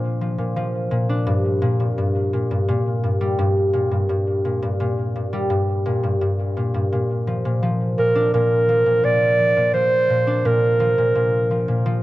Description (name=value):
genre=folktronica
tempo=85 BPM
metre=4/4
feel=straight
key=Bb major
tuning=A4 = 440 Hz
part: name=concert harp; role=arpeggios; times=0.0-12.0 s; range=G2 to D4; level=-20 LUFS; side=left 1 dB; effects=tape echo
part: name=dark clarinet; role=melody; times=8.0-11.9 s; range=Bb4 to D5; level=-17 LUFS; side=right 2 dB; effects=tape echo
room=light reverb, small room ambience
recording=dry, close 1970s-style studio recording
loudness=-17 LUFS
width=side -16 dB against mid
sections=0.0-12.0 A section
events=none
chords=0.0 Bb; 1.3 Gm; 6.9 Bb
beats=0.56 | 1.27 1.98 2.68 3.39 | 4.09 4.80 5.50 6.21 | 6.92 7.62 8.33 9.03 | 9.74 10.45 11.15 11.86